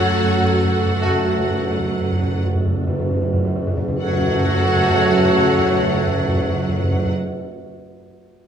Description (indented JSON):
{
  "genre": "classical, slow romantic movement for symphony orchestra",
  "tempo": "42 BPM",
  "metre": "4/4",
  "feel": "rubato",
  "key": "F# minor",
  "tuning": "A4 = 440 Hz",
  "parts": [
    { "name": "warm studio violin section", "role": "melody", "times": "0.0-7.1 s", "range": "F#5", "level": "-27 LUFS", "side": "left 2 dB", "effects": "none" },
    { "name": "flute section", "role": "second line", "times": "0.0-7.1 s", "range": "C#5", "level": "-28 LUFS", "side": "left 1 dB", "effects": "none" },
    { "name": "warm clarinet", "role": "second line", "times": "0.0-7.1 s", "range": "A4", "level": "-28 LUFS", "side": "left 1 dB", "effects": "none" },
    { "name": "warm studio violin section", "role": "second line", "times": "0.0-7.1 s", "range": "F#4", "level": "-28 LUFS", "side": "left 2 dB", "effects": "none" },
    { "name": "warm studio viola section", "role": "accompaniment", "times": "0.0-7.1 s", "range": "A3 to F#4", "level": "-25 LUFS", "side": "equal", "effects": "none" },
    { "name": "dark French horn section", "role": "sustained chords", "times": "0.0-7.1 s", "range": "F#3", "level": "-28 LUFS", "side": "equal", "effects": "none" },
    { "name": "dark studio double bass section", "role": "bass", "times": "0.0-7.1 s", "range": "F#2", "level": "-23 LUFS", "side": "right 1 dB", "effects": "none" },
    { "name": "warm studio cello section", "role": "bass", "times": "0.0-7.1 s", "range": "F#3", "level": "-27 LUFS", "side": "right 4 dB", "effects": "none" },
    { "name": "timpani", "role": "percussion", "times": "0.0-7.1 s", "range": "F#2", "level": "-22 LUFS", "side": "equal", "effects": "none" },
    { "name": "warm trombone section", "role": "sustained chords", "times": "1.0-7.1 s", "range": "C#3 to A3", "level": "-27 LUFS", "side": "right 4 dB", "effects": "none" },
    { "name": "bright trumpet", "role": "stabs", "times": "1.0-7.1 s", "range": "F#4", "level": "-27 LUFS", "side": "right 2 dB", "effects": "none" }
  ],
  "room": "wet recital hall reverb, RT60 1.6 s",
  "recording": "small room ambience",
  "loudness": "-16 LUFS",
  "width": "side -8 dB against mid",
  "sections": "0.0-4.0 A section; 4.0-8.5 B section",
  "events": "timpani fill 0.0-4.0; slowing down 0.0-4.0",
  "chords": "0.0 F#m"
}